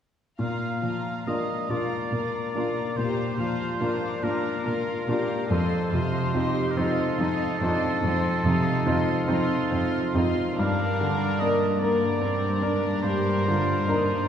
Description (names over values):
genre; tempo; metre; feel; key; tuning
classical, romantic movement for piano and orchestra; 48 BPM (dotted quarters); 12/8; rubato; Bb major; A4 = 440 Hz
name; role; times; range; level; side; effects
clear grand piano; melody; 0.4-14.3 s; F2 to Bb4; -26 LUFS; left 1 dB; none
rich studio violin section; melody; 0.4-14.3 s; Bb5 to C6; -40 LUFS; left 4 dB; none
bright oboe; second line; 0.4-14.3 s; A4 to F5; -31 LUFS; right 1 dB; none
rich studio violin section; second line; 0.4-14.3 s; F4 to F5; -36 LUFS; left 2 dB; none
dark studio cello section; bass; 0.4-14.3 s; F2 to Bb2; -30 LUFS; right 2 dB; none
warm studio viola section; accompaniment; 3.0-14.3 s; Bb3 to A4; -32 LUFS; right 2 dB; none
room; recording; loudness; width
wet concert hall reverb, RT60 1.9 s; heard from further back in the room; -23 LUFS; side -8 dB against mid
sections
0.4-14.3 A section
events
none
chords
0.4 Bb; 5.5 F7; 10.6 Gm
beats
| 0.39 1.70 2.97 4.23 | 5.50 6.77 8.03 9.28 | 10.58 11.80 13.04